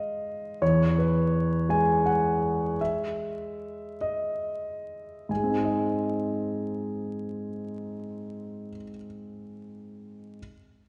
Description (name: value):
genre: cinematic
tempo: 45-58 BPM (dotted quarters)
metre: 6/8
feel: rubato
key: Ab major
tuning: A4 = 440 Hz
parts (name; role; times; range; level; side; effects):
- warm concert grand piano; accompaniment; 0.0-10.4 s; E2 to G#5; -29 LUFS; equal; none
room: wet scoring stage reverb, RT60 1.8 s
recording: recorded in a church or concert hall, vinyl crackle, nothing above 10.5 kHz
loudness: -27 LUFS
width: mono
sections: 0.0-5.3 A section; 5.3-10.4 B section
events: slowing down 0.0-5.3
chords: 0.0 N.C.; 0.6 E; 5.3 Ab